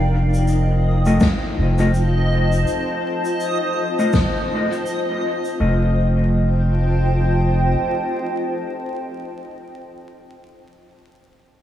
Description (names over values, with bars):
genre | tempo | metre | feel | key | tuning
ambient dub | 82 BPM | 4/4 | swing 60% on 16ths | F mixolydian | A4 = 439 Hz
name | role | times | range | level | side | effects
granular cloud pad | sustained chords | 0.0-9.3 s | Eb4 to A5 | -24 LUFS | equal | built-in reverb, vintage 12-bit sampler grit
soft dub sub bass | bass | 0.0-7.8 s | F1 | -17 LUFS | equal | tube saturation
backwards swelling texture | texture | 0.5-5.6 s | Eb5 | -28 LUFS | left 1 dB | built-in reverb
shaker and snare drum | drums | 0.3-5.6 s | none | -28 LUFS | left 2 dB | studio reverb, dub echo
mellow electric guitar | stabs | 1.1-9.2 s | A3 to Eb5 | -24 LUFS | left 1 dB | low-pass filter, dub echo
electronic kick drum | drums | 1.2-4.3 s | none | -20 LUFS | equal | overdrive, studio reverb
room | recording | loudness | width
moderate huge ambient reverb, RT60 4.6 s | dreamy mix soaked in reverb, vinyl crackle | -17 LUFS | side -11 dB against mid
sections
0.0-5.6 A section; 5.6-8.5 B section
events
filter sweep on clean electric guitar 0.0-5.6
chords
0.0 F7